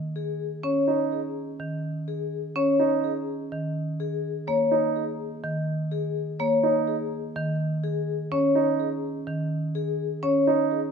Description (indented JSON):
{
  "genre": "classical, minimalist pattern music",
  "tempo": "125 BPM",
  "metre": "4/4",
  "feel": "straight",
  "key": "unclear",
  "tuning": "A4 = 439 Hz",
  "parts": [
    { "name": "vibraphone with medium mallets", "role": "melody", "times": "0.2-10.9 s", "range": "G#4 to C#5", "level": "-26 LUFS", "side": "left 6 dB", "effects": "none" },
    { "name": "marimba with medium hard mallets", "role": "accompaniment", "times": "0.6-10.5 s", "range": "D#3 to C#4", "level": "-28 LUFS", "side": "right 3 dB", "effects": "none" },
    { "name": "dark concert grand piano", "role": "arpeggios", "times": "0.9-10.8 s", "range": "D#4", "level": "-28 LUFS", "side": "right 13 dB", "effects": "none" }
  ],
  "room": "moderate recital hall reverb, RT60 1.6 s",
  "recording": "none",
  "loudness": "-24 LUFS",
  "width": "side -6 dB against mid",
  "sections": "0.0-10.9 A section",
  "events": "none",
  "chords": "0.0 D#7sus4",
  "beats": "0.15 | 0.63 1.11 1.59 2.07 | 2.55 3.03 3.51 3.99 | 4.47 4.95 5.43 5.91 | 6.39 6.87 7.35 7.83 | 8.31 8.79 9.27 9.75 | 10.23 10.71"
}